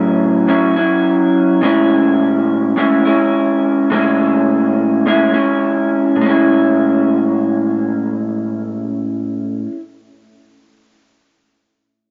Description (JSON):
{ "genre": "indie pop", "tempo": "105 BPM", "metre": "4/4", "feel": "straight", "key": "A major", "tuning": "A4 = 440 Hz", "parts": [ { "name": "electric guitar through a small old amp", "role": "solo", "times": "0.0-9.8 s", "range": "A2 to E4", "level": "-15 LUFS", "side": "equal", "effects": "lush chorus, vibrato effect" } ], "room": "light reverb", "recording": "nothing above 7.5 kHz", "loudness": "-15 LUFS", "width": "mono", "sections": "0.0-1.6 A section; 1.6-6.2 B section; 6.2-8.5 C section", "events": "none", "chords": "0.0 A6; 1.6 Amaj7", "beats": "0.48 1.05 | 1.62 2.19 2.77 3.34 | 3.91 4.48 5.05 5.63 | 6.20 6.77 7.34 7.92" }